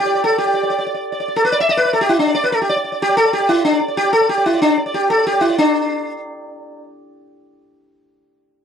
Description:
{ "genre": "indian classical", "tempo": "185 BPM", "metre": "4/4", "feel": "straight", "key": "D raga durga", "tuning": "A4 = 440 Hz", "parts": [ { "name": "sitar", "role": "solo", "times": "0.0-6.8 s", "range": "D4 to E5", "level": "-14 LUFS", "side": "equal", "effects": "none" } ], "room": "light reverb", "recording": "dry, close 1970s-style studio recording", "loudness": "-14 LUFS", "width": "side -7 dB against mid", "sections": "0.0-5.6 A section; 5.6-8.1 B section", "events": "speeding up 0.0-8.1", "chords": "none" }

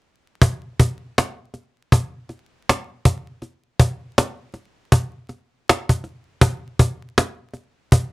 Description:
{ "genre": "hip hop", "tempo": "80 BPM", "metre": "4/4", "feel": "swing 61% on 16ths", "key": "none", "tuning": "none", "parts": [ { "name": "cajon", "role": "drums", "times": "0.4-8.1 s", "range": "none", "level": "-14 LUFS", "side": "equal", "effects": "none" } ], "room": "moderate small room reverb, RT60 0.5 s", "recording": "vinyl crackle", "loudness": "-18 LUFS", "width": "side -22 dB against mid", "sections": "0.4-8.1 A section", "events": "none", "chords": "none" }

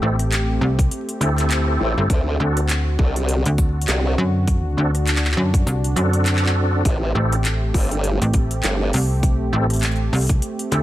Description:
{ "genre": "glitch hop", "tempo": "101 BPM", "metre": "4/4", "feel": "swing 58% on 16ths", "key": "A dorian", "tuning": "A4 = 440 Hz", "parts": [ { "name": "warm analog pad", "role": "sustained chords", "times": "0.0-10.8 s", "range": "D3 to G4", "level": "-27 LUFS", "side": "equal", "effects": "chorus, sidechain pumping" }, { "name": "tonewheel organ", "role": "stabs", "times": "0.0-10.8 s", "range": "C4 to A4", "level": "-26 LUFS", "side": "equal", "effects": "chorus vibrato, fast rotary speaker, sidechain pumping, tape echo" }, { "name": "slap-like FM bass", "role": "bass", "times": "0.0-10.8 s", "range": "G1 to F#2", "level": "-19 LUFS", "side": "equal", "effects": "none" }, { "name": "drum and bass drum kit", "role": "drums", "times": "0.2-10.8 s", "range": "handclaps, hi-hat, rim click", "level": "-26 LUFS", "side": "equal", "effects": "studio reverb" }, { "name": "electronic kick drum", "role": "drums", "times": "0.8-10.4 s", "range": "none", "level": "-18 LUFS", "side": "equal", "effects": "studio reverb" }, { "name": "formant-sweep wobble bass", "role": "bass", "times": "1.8-8.9 s", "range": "G1 to D2", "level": "-20 LUFS", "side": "equal", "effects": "chorus, overdrive" } ], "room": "digital ambience", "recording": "vinyl crackle", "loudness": "-17 LUFS", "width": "side -14 dB against mid", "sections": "0.0-10.8 A section", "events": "none", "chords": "0.0 Am7; 2.1 D7; 6.9 Am7" }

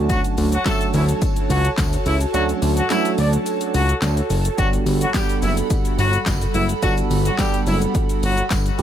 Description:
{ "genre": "dance-pop", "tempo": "107 BPM", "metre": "4/4", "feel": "straight", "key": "unclear", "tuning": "A4 = 439 Hz", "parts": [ { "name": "tine electric piano", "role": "accompaniment", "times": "0.0-8.8 s", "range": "F#3 to A4", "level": "-24 LUFS", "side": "right 6 dB", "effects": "phaser, sidechain pumping" }, { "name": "airy breathy pad", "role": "sustained chords", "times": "0.0-8.8 s", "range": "G3 to B5", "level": "-27 LUFS", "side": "right 1 dB", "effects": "chorus, sidechain pumping" }, { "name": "fat analog bass", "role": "bass", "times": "0.0-8.8 s", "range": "F#1 to D2", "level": "-20 LUFS", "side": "left 1 dB", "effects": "sidechain pumping" }, { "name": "clear horn section", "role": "melody", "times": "0.1-8.4 s", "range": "E3 to D5", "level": "-24 LUFS", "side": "left 1 dB", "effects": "sidechain pumping, ping-pong delay" }, { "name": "house drum kit", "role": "drums", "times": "0.1-8.8 s", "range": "handclaps, hi-hat, kick drum, shaker, snare drum", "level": "-23 LUFS", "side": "left 1 dB", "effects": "none" }, { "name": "tambourine", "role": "percussion", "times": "0.1-8.8 s", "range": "none", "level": "-38 LUFS", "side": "left 6 dB", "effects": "none" } ], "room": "little or no reverb", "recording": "none", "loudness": "-17 LUFS", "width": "side -10 dB against mid", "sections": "0.0-8.8 A section", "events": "kick muted 2.3-4.6", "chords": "0.0 Dmaj7; 4.6 Gmaj7" }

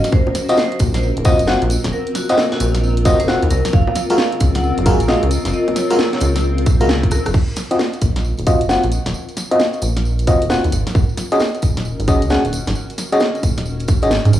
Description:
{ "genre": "UK garage, two-step garage", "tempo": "133 BPM", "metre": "4/4", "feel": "swing 64% on 16ths", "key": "Eb dorian", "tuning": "A4 = 440 Hz", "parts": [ { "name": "vibraphone with hard mallets", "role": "melody", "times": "0.0-7.3 s", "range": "Gb4 to Ab5", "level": "-26 LUFS", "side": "equal", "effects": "cassette tape, analog delay" }, { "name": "garage drum kit", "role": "drums", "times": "0.0-14.4 s", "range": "bongos, crash cymbal, hi-hat, rim click, snare drum", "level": "-23 LUFS", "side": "equal", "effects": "studio reverb, cassette tape" }, { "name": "tambourine", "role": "percussion", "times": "0.0-14.4 s", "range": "none", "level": "-32 LUFS", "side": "right 2 dB", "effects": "none" }, { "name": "granular cloud pad", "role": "texture", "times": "0.0-14.4 s", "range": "C4 to Bb4", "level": "-25 LUFS", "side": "left 1 dB", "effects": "built-in reverb, sidechain pumping" }, { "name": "rubbery square bass", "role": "bass", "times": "0.1-14.4 s", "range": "Eb1 to Ab2", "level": "-18 LUFS", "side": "equal", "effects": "none" }, { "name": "electronic kick drum", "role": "drums", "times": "0.1-14.0 s", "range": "none", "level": "-15 LUFS", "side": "equal", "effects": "studio reverb, cassette tape" }, { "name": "FM electric piano", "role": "stabs", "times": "0.5-14.1 s", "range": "Ab3 to Gb5", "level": "-18 LUFS", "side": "equal", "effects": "chorus, low-pass filter, analog delay" } ], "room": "moderate spring reverb, RT60 1.6 s", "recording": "home recording on cassette, small room reverb", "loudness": "-14 LUFS", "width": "side -12 dB against mid", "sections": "0.0-7.3 A section; 7.3-14.4 B section", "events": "drop 0.0-7.3; band accent 6.9; drum fill 7.1; fade-in on ambient pad 7.3-14.4; filter sweep on FM electric piano 7.3-14.4", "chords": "0.1 Ebm69; 3.7 Gbmaj9; 7.3 Ebm69; 10.7 Ab7sus4" }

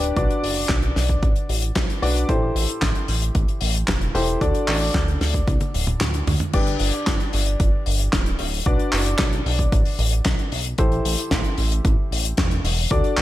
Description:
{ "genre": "italo disco", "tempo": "113 BPM", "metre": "4/4", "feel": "straight", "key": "G major", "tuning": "A4 = 440 Hz", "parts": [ { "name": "dark baby grand piano", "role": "stabs", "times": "0.0-13.2 s", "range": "D4 to D5", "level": "-26 LUFS", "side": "left 2 dB", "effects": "digital delay" }, { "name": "chorused synth bass", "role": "bass", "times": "0.0-13.2 s", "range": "D1 to D2", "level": "-23 LUFS", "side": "equal", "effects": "none" }, { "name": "damped 70s drum kit", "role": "drums", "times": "0.0-13.2 s", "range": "crash cymbal, handclaps, hi-hat, snare drum, toms", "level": "-25 LUFS", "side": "left 1 dB", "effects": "gated reverb" }, { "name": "electronic kick drum", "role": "drums", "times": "0.2-13.0 s", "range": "none", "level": "-22 LUFS", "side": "equal", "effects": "none" } ], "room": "studio ambience", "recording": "none", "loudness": "-19 LUFS", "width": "side -15 dB against mid", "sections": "0.0-6.5 A section; 6.5-13.2 B section", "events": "drum fill 5.5-6.5; kick drops out 6.0-6.5", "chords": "0.2 Bm; 2.3 Am7; 4.4 D; 6.5 G; 8.7 Bm; 10.8 Am7" }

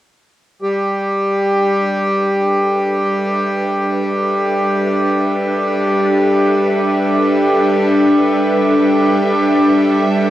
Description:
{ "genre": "ambient", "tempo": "free time", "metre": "none", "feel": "none", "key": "G major", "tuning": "A4 = 441 Hz", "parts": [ { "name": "evolving wavetable pad", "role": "sustained chords", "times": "1.6-10.3 s", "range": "G3 to E5", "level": "-16 LUFS", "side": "equal", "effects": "ensemble chorus, built-in reverb" }, { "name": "hand-pumped harmonium", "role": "drone", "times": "0.6-10.3 s", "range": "G3 to G4", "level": "-15 LUFS", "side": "equal", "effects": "none" } ], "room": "wet studio reverb, RT60 0.6 s", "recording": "home recording on cassette", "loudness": "-13 LUFS", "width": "side -13 dB against mid", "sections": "0.6-10.3 A section", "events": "fade-in on ambient pad 0.6-10.3", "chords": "0.6 G69" }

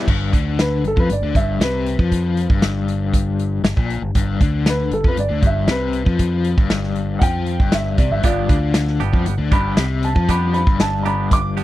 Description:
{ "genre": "indie rock", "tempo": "117 BPM", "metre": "4/4", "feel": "straight", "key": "unclear", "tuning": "A4 = 439 Hz", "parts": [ { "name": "biting overdriven guitar", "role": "riff", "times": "0.0-11.6 s", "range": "G2 to F3", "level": "-23 LUFS", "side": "left 6 dB", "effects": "tremolo" }, { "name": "twangy electric guitar", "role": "riff", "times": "0.0-0.1, 8.2-11.6 s", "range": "G3 to G4", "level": "-27 LUFS", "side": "right 11 dB", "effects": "wide subtle chorus, slapback echo" }, { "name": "growling fingered electric bass", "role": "bass", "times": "0.1-11.6 s", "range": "G1 to F2", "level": "-21 LUFS", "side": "right 1 dB", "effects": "overdrive" }, { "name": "loose indie drum kit", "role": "drums", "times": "0.1-11.6 s", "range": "crash cymbal, hi-hat, kick drum, snare drum", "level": "-18 LUFS", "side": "equal", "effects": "none" }, { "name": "dark upright piano", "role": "melody", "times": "0.6-11.6 s", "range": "F4 to D6", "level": "-23 LUFS", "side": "right 1 dB", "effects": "slapback echo" } ], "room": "little or no reverb", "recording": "dry, close 1970s-style studio recording", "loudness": "-16 LUFS", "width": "side -15 dB against mid", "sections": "0.1-11.6 A section", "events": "upright piano solo 0.1-11.6", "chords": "0.1 G" }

